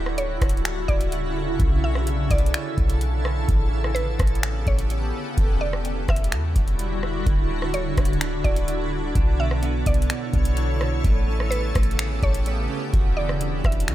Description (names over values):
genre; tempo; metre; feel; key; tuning
hip hop, atmospheric cloud-rap; 127 BPM; 4/4; half-time; B minor; A4 = 440 Hz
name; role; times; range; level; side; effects
shimmering ambient pad; sustained chords; 0.0-13.9 s; C#3 to C#5; -28 LUFS; equal; chorus, built-in reverb
clean 808-style bass; bass; 0.0-13.9 s; D1 to E2; -24 LUFS; equal; none
booming analog drum machine; drums; 0.1-13.9 s; finger snaps, hi-hat, kick drum, rim click; -22 LUFS; equal; none
mallet-like synth pluck; melody; 0.2-13.9 s; B4 to E5; -31 LUFS; right 2 dB; chorus, digital delay
clean electric guitar; arpeggios; 7.3-13.9 s; B2 to A4; -32 LUFS; right 8 dB; wide subtle chorus, digital delay
room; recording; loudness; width
digital ambience; none; -20 LUFS; side -14 dB against mid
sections
0.0-13.9 A section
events
none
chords
0.0 Dmaj9; 1.6 Bm11; 3.5 A9; 5.4 Em9; 7.3 Dmaj9; 9.2 Bm11; 11.0 A9; 12.9 Em9